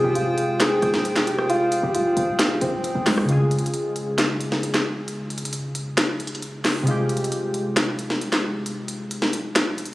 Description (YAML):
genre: hip hop, trap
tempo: 134 BPM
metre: 4/4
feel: half-time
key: F minor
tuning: A4 = 439 Hz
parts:
  - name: dark grand piano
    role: melody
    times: 0.0-3.2 s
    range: Ab3 to Ab4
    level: -22 LUFS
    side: equal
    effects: digital delay
  - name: glassy digital keys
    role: accompaniment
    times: 0.0-9.9 s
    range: C3 to Ab4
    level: -26 LUFS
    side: equal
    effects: chorus
  - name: hollow soft pad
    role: sustained chords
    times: 0.0-3.3 s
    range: F4 to G5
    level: -30 LUFS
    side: equal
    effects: chorus, tremolo
  - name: short 808-style bass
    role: bass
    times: 0.0-3.3 s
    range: F1 to F2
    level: -32 LUFS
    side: equal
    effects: none
  - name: trap drum kit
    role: drums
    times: 0.2-9.9 s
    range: handclaps, hi-hat, rim click, snare drum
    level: -23 LUFS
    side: equal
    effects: none
room: light reverb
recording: recorded on a phone in the room, club reverb, compression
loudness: -20 LUFS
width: side -18 dB against mid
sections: 0.0-3.3 A section; 3.3-9.9 B section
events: break 3.3-9.9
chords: 0.0 Fmadd9; 3.3 Db; 6.9 Fmadd9